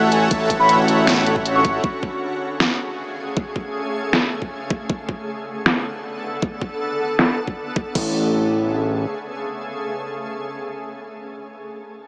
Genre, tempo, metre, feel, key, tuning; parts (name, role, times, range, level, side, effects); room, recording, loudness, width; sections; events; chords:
future bass; 157 BPM; 4/4; half-time; A major; A4 = 440 Hz
shimmering ambient pad; sustained chords; 0.0-11.1 s; C#3 to A4; -30 LUFS; equal; chorus, built-in reverb, sidechain pumping
soft supersaw; riff; 0.0-1.8 s; A3 to A5; -25 LUFS; equal; sidechain pumping, digital delay
fat analog bass; bass; 0.0-1.8, 8.0-9.1 s; A1; -22 LUFS; equal; sidechain pumping
warm velvety synth lead; melody; 0.1-1.7 s; G#5 to C#6; -24 LUFS; equal; chorus, sidechain pumping, digital delay
pop drum kit; drums; 0.1-8.0 s; crash cymbal, finger snaps, hi-hat, snare drum; -22 LUFS; equal; overdrive, low-pass filter on hats, low-pass filter on cymbals, low-pass filter on snare, low-pass filter on room
electronic kick drum; drums; 0.3-8.0 s; -26 LUFS; equal; overdrive
moderate shimmer reverb, RT60 7.4 s; small speaker sound; -21 LUFS; mono
0.0-8.0 A section; 8.0-11.0 B section
filter sweep on drum 0.0-8.0
0.0 Dmaj7/A; 1.8 Amaj7; 4.9 Bm7; 8.0 Amaj7